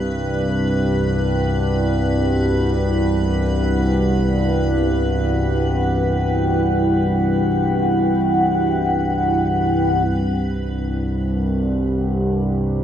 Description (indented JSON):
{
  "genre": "dark ambient drone",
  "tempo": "free time",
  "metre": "none",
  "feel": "none",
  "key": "unclear",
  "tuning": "A4 = 440 Hz",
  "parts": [
    { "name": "deep dark ambient pad", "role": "sustained chords", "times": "0.5-12.8 s", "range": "E4 to G5", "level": "-22 LUFS", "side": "equal", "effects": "chorus, built-in reverb" },
    { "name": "analog drone", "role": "drone", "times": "0.0-12.8 s", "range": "C2 to G2", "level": "-19 LUFS", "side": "equal", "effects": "chorus" },
    { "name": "icy glass pad", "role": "texture", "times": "0.0-10.1 s", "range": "B4", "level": "-29 LUFS", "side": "equal", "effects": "chorus, built-in reverb" }
  ],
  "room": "wet echo chamber reverb, RT60 2.3 s",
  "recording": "none",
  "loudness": "-17 LUFS",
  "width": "side -10 dB against mid",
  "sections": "0.0-10.1 A section; 10.1-12.8 B section",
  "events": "none",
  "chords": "0.0 Em"
}